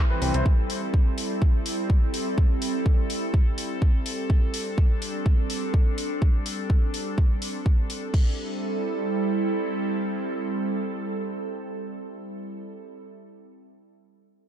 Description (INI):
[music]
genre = progressive house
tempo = 125 BPM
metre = 4/4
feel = straight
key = A minor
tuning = A4 = 442 Hz
[part]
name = evolving wavetable pad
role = sustained chords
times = 0.0-12.7 s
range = G3 to A4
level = -29 LUFS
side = right 2 dB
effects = chorus, built-in reverb, sidechain pumping
[part]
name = house drum kit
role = drums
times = 0.2-8.2 s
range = crash cymbal, hi-hat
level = -34 LUFS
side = left 2 dB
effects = none
[part]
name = electronic kick drum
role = drums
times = 0.5-8.2 s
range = none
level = -20 LUFS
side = equal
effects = none
[sound]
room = light reverb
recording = dark, warm production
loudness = -22 LUFS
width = side -10 dB against mid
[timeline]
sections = 0.0-8.1 A section; 8.1-12.0 B section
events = none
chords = 0.5 Am7